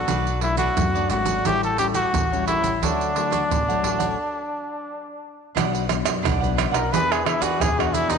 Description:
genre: samba and choro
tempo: 88 BPM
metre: 4/4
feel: straight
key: D major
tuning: A4 = 440 Hz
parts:
  - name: breathy trumpet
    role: melody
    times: 0.0-8.2 s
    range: D4 to B4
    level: -23 LUFS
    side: left 1 dB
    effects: tape echo
  - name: cavaquinho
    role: accompaniment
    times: 0.0-8.2 s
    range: D4 to G5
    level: -29 LUFS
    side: right 10 dB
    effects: none
  - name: nylon-string guitar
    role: accompaniment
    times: 0.0-8.2 s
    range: F#2 to G#4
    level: -29 LUFS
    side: left 13 dB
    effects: none
  - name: upright bass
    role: bass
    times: 0.0-8.2 s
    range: G#1 to F#2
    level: -29 LUFS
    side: left 2 dB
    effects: none
  - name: maracas, surdo, pandeiro and tamborim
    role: percussion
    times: 0.1-8.2 s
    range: none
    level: -25 LUFS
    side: right 6 dB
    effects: none
room: moderate plate reverb, RT60 2.2 s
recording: 1960s-style stereo with parts hard left and right, nothing above 10.8 kHz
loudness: -20 LUFS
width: side -6 dB against mid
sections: 0.0-5.6 A section; 5.6-8.2 B section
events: stop 4.2-5.6; trumpet solo 5.6-8.2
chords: 0.1 Bm7; 1.5 A7; 2.8 Dmaj7; 5.6 Bm; 6.9 E7

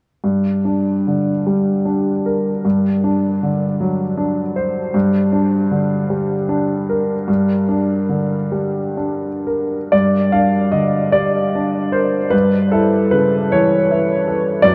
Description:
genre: classical, romantic character piece for solo piano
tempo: 39-55 BPM (dotted quarters)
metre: 6/8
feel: rubato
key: G minor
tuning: A4 = 440 Hz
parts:
  - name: warm grand piano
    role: solo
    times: 0.2-14.7 s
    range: F#2 to F5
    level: -17 LUFS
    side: equal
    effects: none
room: wet huge ambient reverb, RT60 8.9 s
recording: in a vast, echoing space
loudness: -17 LUFS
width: mono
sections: 0.2-9.9 A section; 9.9-14.7 B section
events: none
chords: 0.2 Gm; 2.6 D7/G; 4.9 Gm; 12.3 A7/G

